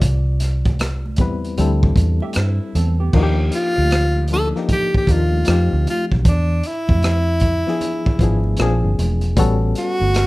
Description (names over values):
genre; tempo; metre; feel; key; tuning
R&B, neo-soul; 77 BPM; 4/4; swing 63% on 16ths; unclear; A4 = 439 Hz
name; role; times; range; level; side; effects
barky reed electric piano; accompaniment; 0.0-10.3 s; F3 to D5; -23 LUFS; left 4 dB; overdrive, fast tremolo
vintage muted fingered electric bass; bass; 0.0-10.3 s; E1 to G2; -18 LUFS; equal; none
crunchy breakbeat drum kit; drums; 0.0-10.3 s; crash cymbal, hi-hat, kick drum, rim click; -20 LUFS; equal; none
congas; percussion; 0.4-10.1 s; none; -34 LUFS; right 4 dB; none
hollow-body jazz guitar; second line; 2.2-3.4 s; B3 to E5; -31 LUFS; right 6 dB; none
breathy tenor saxophone; melody; 3.6-10.3 s; D4 to A4; -21 LUFS; equal; slapback echo
room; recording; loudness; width
light reverb; rough home demo mix; -15 LUFS; side -20 dB against mid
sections
0.0-3.1 A section; 3.1-10.3 B section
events
none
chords
0.0 Cmaj7; 1.6 D9sus4; 3.1 Ebmaj9; 5.5 F9; 6.2 E7b9; 8.6 Bb9; 9.4 A13